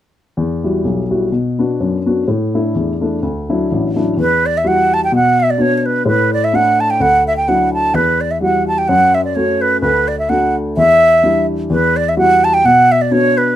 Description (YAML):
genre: celtic folk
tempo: 127 BPM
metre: 2/4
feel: swing 55% on 8ths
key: E dorian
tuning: A4 = 440 Hz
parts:
  - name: dark upright piano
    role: accompaniment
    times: 0.4-13.6 s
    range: A1 to F#4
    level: -16 LUFS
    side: left 2 dB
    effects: none
  - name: bright wooden flute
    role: melody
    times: 4.2-13.6 s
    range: B4 to A5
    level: -12 LUFS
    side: right 2 dB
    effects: none
room: moderate small room reverb, RT60 0.5 s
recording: close, detailed microphones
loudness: -12 LUFS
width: side -12 dB against mid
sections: 0.4-4.2 A section; 4.2-11.7 B section; 11.7-13.6 B section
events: none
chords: 0.4 Emadd9; 1.3 Bm; 2.3 Asus4; 3.2 Dadd9; 4.2 Emadd9; 5.1 Bm; 6.1 Asus4; 7.0 Dadd9; 7.9 Emadd9; 8.9 F#m; 9.8 D; 10.8 Em7; 11.7 Emadd9; 12.6 Bm